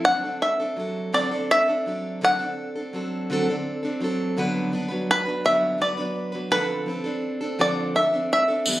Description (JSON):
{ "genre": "acoustic folk duo or small band", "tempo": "56 BPM (dotted quarters)", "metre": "6/8", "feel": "straight", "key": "unclear", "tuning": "A4 = 440 Hz", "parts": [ { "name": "bluegrass banjo", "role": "melody", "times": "0.0-8.8 s", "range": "B4 to F#5", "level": "-21 LUFS", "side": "equal", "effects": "none" }, { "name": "picked plugged-in steel-string acoustic guitar", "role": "accompaniment", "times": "0.0-8.8 s", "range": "G2 to B4", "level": "-26 LUFS", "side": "right 1 dB", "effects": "none" }, { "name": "tambourine", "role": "percussion", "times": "8.7-8.8 s", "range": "none", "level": "-21 LUFS", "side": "right 1 dB", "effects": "none" } ], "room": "moderate studio reverb, RT60 0.9 s", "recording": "recorded on a phone in the room, club reverb, compression", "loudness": "-22 LUFS", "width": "side -15 dB against mid", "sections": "0.0-4.4 A section; 4.4-8.8 B section", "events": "five-string banjo solo 4.4-8.8", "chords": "0.1 D7; 4.4 Gmaj7; 6.5 Dm7" }